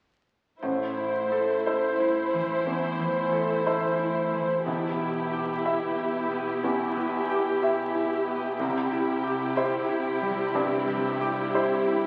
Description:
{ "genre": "cinematic, emotional film score for orchestra", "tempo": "60 BPM", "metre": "4/4", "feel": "rubato", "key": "A minor", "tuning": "A4 = 442 Hz", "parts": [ { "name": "bright baby grand piano", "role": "accompaniment", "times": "0.6-12.1 s", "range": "A1 to E5", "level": "-32 LUFS", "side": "equal", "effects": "none" }, { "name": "warm symphonic viola section", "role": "accompaniment", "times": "0.6-12.1 s", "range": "E4 to C5", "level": "-30 LUFS", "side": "equal", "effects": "none" }, { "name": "concert harp", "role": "arpeggios", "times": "0.6-12.1 s", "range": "A2 to E5", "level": "-34 LUFS", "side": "equal", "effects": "none" }, { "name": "dark symphonic cello section", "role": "bass", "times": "0.6-12.1 s", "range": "A2 to C3", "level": "-39 LUFS", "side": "equal", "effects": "none" } ], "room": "wet scoring stage reverb, RT60 1.5 s", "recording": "very old 78 rpm record, vinyl crackle", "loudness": "-27 LUFS", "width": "mono", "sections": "0.6-12.1 A section", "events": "none", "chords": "0.6 Am; 4.7 Em/B; 8.6 C" }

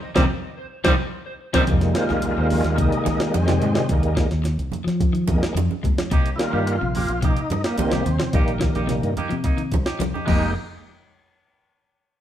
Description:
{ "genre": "afrobeat", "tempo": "108 BPM", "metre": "4/4", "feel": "straight", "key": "F minor", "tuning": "A4 = 442 Hz", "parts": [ { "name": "clean electric guitar", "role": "stabs", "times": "0.1-1.6, 6.1-10.5 s", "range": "Ab3 to G4", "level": "-30 LUFS", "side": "right 3 dB", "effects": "none" }, { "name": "bright alto saxophone", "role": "melody", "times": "0.2-1.6 s", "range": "C5", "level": "-29 LUFS", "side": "right 1 dB", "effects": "tape echo" }, { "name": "bright trombone section", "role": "second line", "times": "0.2-1.6 s", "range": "Bb2 to Eb3", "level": "-34 LUFS", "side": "left 2 dB", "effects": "none" }, { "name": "raspy tenor saxophone", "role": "second line", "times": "0.2-1.6 s", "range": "G3", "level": "-32 LUFS", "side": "right 3 dB", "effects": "none" }, { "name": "overdriven tonewheel organ", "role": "accompaniment", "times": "0.2-10.5 s", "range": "Eb3 to G4", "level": "-24 LUFS", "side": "equal", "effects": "slow rotary speaker, chorus vibrato" }, { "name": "electric guitar at the edge of break-up", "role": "arpeggios", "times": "0.2-10.4 s", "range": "C3 to Ab3", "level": "-29 LUFS", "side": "left 5 dB", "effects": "spring reverb" }, { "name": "fingered electric bass", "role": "bass", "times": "0.2-10.5 s", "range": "F1 to F3", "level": "-24 LUFS", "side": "equal", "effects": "none" }, { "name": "jungle sampler-style drum kit", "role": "drums", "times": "0.2-10.4 s", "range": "crash cymbal, hi-hat, kick drum, snare drum", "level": "-23 LUFS", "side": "equal", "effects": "none" }, { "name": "congas", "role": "percussion", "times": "0.2-10.4 s", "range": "none", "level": "-30 LUFS", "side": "right 5 dB", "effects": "none" } ], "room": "moderate stone room reverb, RT60 1.0 s", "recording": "band playing live in one room", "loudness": "-19 LUFS", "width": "side -11 dB against mid", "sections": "0.0-1.7 A section; 1.7-10.6 B section; 10.6-12.2 C section", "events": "band accent 0.0-1.7; drum fill 1.1-1.7; tonewheel organ solo 1.7-10.6", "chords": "0.0 Cm7; 1.7 Fm11; 6.1 Cm7; 10.3 Fm11; 10.6 N.C." }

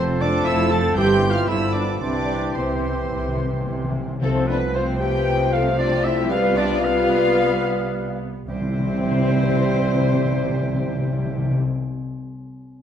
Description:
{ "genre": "quick classical-period movement for symphony orchestra", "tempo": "103-119 BPM", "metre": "4/4", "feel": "rubato", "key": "C major", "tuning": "A4 = 440 Hz", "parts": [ { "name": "muted chamber violin section", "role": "melody", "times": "0.0-11.6 s", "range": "A4 to A6", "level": "-31 LUFS", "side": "equal", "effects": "none" }, { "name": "bright large flute ensemble", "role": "second line", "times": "0.0-11.6 s", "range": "A4 to C6", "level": "-31 LUFS", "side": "left 2 dB", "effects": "none" }, { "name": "clear oboe", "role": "second line", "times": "0.0-11.6 s", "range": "G4 to A5", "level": "-32 LUFS", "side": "equal", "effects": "none" }, { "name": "dark clarinet", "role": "second line", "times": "0.0-11.6 s", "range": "C4 to E5", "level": "-29 LUFS", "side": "left 2 dB", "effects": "none" }, { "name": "muted studio violin section", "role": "second line", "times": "0.0-11.6 s", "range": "C4 to A5", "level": "-28 LUFS", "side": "left 2 dB", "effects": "none" }, { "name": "mellow bassoon", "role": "accompaniment", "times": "0.0-11.6 s", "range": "E3 to G3", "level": "-30 LUFS", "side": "right 2 dB", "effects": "none" }, { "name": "muted studio viola section", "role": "accompaniment", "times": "0.0-11.6 s", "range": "F3 to A4", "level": "-28 LUFS", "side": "right 2 dB", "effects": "none" }, { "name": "warm French horn section", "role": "sustained chords", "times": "0.0-11.6 s", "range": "A3 to G4", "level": "-27 LUFS", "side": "left 4 dB", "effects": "none" }, { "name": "mellow trumpet", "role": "stabs", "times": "0.0-3.9 s", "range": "G4 to A4", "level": "-30 LUFS", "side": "right 2 dB", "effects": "none" }, { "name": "muted studio cello section", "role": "bass", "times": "0.0-11.6 s", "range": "F2 to C3", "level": "-28 LUFS", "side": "right 2 dB", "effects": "none" }, { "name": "muted studio double bass section", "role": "bass", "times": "0.0-11.6 s", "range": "F1 to C2", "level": "-28 LUFS", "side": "right 3 dB", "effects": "none" }, { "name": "timpani", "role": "percussion", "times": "1.0-5.0, 8.5-11.6 s", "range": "G2 to C3", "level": "-25 LUFS", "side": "left 2 dB", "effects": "none" } ], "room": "moderate scoring stage reverb, RT60 1.5 s", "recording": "dark, warm production", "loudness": "-18 LUFS", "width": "side -9 dB against mid", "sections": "0.0-4.2 A section; 4.2-8.5 B section; 8.5-12.8 C section", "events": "timpani fill 2.0-4.2; slowing down 3.1-8.5", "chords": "0.0 F; 1.0 C/G; 1.5 G13; 2.0 C; 4.2 F/C; 6.3 G7/C; 8.5 C" }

